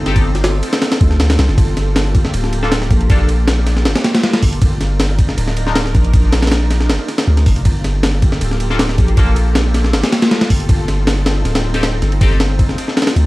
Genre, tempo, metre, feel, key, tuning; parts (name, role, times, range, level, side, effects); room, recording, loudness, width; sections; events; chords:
drum and bass, jungle; 158 BPM; 4/4; straight; G minor; A4 = 440 Hz
lush unison pad; sustained chords; 0.0-13.3 s; Bb3 to Bb4; -24 LUFS; equal; chorus, phaser
long sustained 808-style bass; bass; 0.0-13.3 s; D1 to D2; -15 LUFS; equal
band-passed chord stab; stabs; 0.1-0.2, 2.6-3.2, 5.7-5.8, 8.7-9.3, 11.7-12.4 s; Bb3 to Bb4; -25 LUFS; left 2 dB; phaser, lush chorus, cassette tape, dub echo
breakbeat sampler-style drum kit; drums; 0.1-13.3 s; hi-hat, kick drum, ride cymbal, snare drum; -14 LUFS; equal; small room ambience
little or no reverb; dry, gritty hardware recording, vinyl crackle; -12 LUFS; side -20 dB against mid
0.0-13.3 A section
0.0 F7; 1.6 Gm9; 4.6 Ebmaj9/D; 7.7 Gm9; 10.7 F7